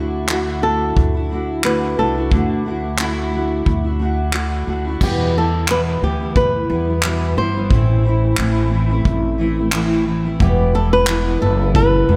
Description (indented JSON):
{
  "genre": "acoustic pop",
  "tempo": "89 BPM",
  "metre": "4/4",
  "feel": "swing 55% on 16ths",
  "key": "unclear",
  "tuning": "A4 = 442 Hz",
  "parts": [
    { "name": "flamenco guitar", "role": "melody", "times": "0.0-12.2 s", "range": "F#4 to C5", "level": "-23 LUFS", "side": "equal", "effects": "none" },
    { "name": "fingerpicked steel-string acoustic guitar", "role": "accompaniment", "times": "0.0-12.2 s", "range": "E2 to F#4", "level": "-23 LUFS", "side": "equal", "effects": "double-tracked" },
    { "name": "upright bass", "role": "bass", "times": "0.0-12.2 s", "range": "E1 to E2", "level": "-22 LUFS", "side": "equal", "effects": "none" },
    { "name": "natural country drum kit", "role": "drums", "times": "0.3-11.9 s", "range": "crash cymbal, handclaps, kick drum", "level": "-24 LUFS", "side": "equal", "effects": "none" }
  ],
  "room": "moderate concert hall reverb, RT60 2.1 s",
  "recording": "big arena sound",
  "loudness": "-18 LUFS",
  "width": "mono",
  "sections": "0.0-5.0 A section; 5.0-12.2 B section",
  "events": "none",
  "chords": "0.0 Dadd9; 5.0 Em; 7.7 Am; 10.4 Em",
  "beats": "0.29 0.96 1.64 | 2.31 2.99 3.66 4.34 | 5.01 5.69 6.36 7.03 | 7.71 8.38 9.06 9.73 | 10.40 11.08 11.75"
}